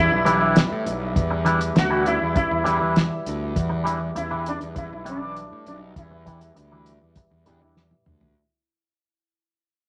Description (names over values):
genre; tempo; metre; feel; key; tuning
psychedelic rock; 100 BPM; 4/4; straight; E minor; A4 = 439 Hz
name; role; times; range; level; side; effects
sitar; melody; 0.0-7.7 s; D4 to F#4; -29 LUFS; equal; low-pass filter
pedal harmonium; sustained chords; 0.0-8.3 s; G3 to E5; -33 LUFS; equal; low-pass filter
fuzz picked electric bass; bass; 0.0-8.3 s; B1 to A2; -30 LUFS; equal; overdrive
twangy electric guitar; riff; 0.3-7.8 s; E3 to E4; -26 LUFS; equal; phaser, low-pass filter
cloth-damped thuddy drum kit; drums; 0.3-8.4 s; hi-hat, kick drum, snare drum, toms; -24 LUFS; equal; none
room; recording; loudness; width
moderate studio reverb, RT60 0.7 s; none; -22 LUFS; mono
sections
0.0-8.4 A section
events
fade-out 0.0-8.4; filter sweep 0.0-8.4; drum fill 7.8-8.4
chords
0.0 Em7